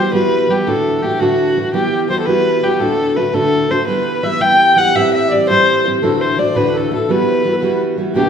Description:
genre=celtic folk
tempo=112 BPM (dotted quarters)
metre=6/8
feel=straight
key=E minor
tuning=A4 = 440 Hz
part: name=dark fiddle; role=melody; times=0.0-8.3 s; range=F#4 to G5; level=-15 LUFS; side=left 1 dB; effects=none
part: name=fingerpicked steel-string acoustic guitar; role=accompaniment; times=0.0-8.3 s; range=D2 to G4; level=-16 LUFS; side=right 2 dB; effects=none
part: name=mellow baroque flute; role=second line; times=3.9-8.3 s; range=G4 to G5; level=-23 LUFS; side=left 4 dB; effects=none
room=wet recital hall reverb, RT60 1.4 s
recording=recorded in a church or concert hall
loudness=-12 LUFS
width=side -7 dB against mid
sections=0.0-8.2 A section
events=none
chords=0.0 Emadd9; 0.7 Dadd9; 1.7 Emadd9; 2.8 D; 3.9 Em; 5.0 Am7; 6.0 Dadd9; 7.1 Emadd9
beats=0.12 | 0.66 1.20 | 1.73 2.27 | 2.81 3.34 | 3.88 4.42 | 4.95 5.49 | 6.02 6.56 | 7.09 7.62 | 8.16

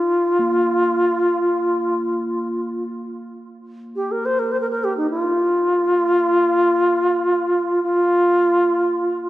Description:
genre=world meditative, free-time meditation music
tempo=free time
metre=none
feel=none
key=unclear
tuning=A4 = 439 Hz
part: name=alto flute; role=melody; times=0.0-9.3 s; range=Eb4 to C5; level=-17 LUFS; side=equal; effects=diffuse ambient delay
part: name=quartz singing bowl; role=texture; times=0.4-8.8 s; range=Bb3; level=-32 LUFS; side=equal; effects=none
room=wet concert hall reverb, RT60 2.2 s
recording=worn, warbling old tape, cassette tape, warbly pitch drift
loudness=-16 LUFS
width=side -16 dB against mid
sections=0.0-9.3 A section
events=none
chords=none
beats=free time

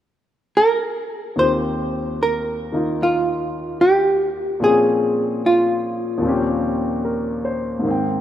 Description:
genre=jazz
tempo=74 BPM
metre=4/4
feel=swing 68% on 8ths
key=Eb major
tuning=A4 = 440 Hz
part: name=hollow-body jazz guitar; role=melody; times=0.6-7.0 s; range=F4 to C5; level=-18 LUFS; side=equal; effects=none
part: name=warm baby grand piano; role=accompaniment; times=1.4-8.2 s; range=Eb2 to G5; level=-22 LUFS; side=left 1 dB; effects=none
room=wet plate reverb, RT60 2.5 s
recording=rough home demo mix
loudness=-17 LUFS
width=side -11 dB against mid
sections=0.0-1.4 A section; 1.4-8.2 B section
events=none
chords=0.0 N.C.; 1.4 Eb69; 4.6 Bbm7; 6.2 Eb13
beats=0.57 | 1.38 2.19 3.00 3.81 | 4.62 5.43 6.23 7.04 | 7.84

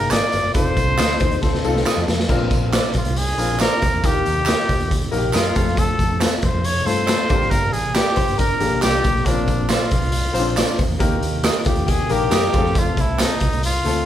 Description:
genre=uptempo 1960s-style soul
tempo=138 BPM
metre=4/4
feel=straight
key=Bb major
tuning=A4 = 439 Hz
part: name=warm trumpet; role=melody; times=0.0-14.1 s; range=D4 to D5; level=-22 LUFS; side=equal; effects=none
part: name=clear grand piano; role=accompaniment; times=0.0-14.1 s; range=G2 to C5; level=-25 LUFS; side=left 3 dB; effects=none
part: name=vintage muted fingered electric bass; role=bass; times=0.0-14.1 s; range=F1 to G2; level=-24 LUFS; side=equal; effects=none
part: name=electric guitar through a small old amp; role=stabs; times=0.1-13.3 s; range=C4 to Eb5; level=-27 LUFS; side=right 3 dB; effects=none
part: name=raw garage drum kit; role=drums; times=0.1-13.9 s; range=crash cymbal, hi-hat, kick drum, snare drum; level=-20 LUFS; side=equal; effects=none
part: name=handclaps and tambourine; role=percussion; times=0.1-13.9 s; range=none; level=-32 LUFS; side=right 3 dB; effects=none
part: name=direct-recorded clean electric guitar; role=riff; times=1.0-2.0, 8.2-12.5 s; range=A3 to C5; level=-27 LUFS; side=left 7 dB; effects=none
room=moderate large studio reverb, RT60 1.1 s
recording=band playing live in one room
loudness=-16 LUFS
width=side -11 dB against mid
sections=0.0-2.3 A section; 2.3-14.1 B section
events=drum fill 1.4-2.3; trumpet solo 2.3-14.1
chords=0.0 Absus2; 0.6 F7; 2.3 Bbadd9; 4.0 Eb; 5.6 F; 7.3 Gm; 9.3 Bbadd9; 11.0 Eb; 12.5 F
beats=0.12 | 0.55 0.99 1.42 1.86 | 2.29 2.73 3.17 3.60 | 4.04 4.47 4.91 5.34 | 5.78 6.21 6.65 7.08 | 7.52 7.95 8.39 8.83 | 9.26 9.70 10.13 10.57 | 11.01 11.44 11.88 12.32 | 12.75 13.19 13.63

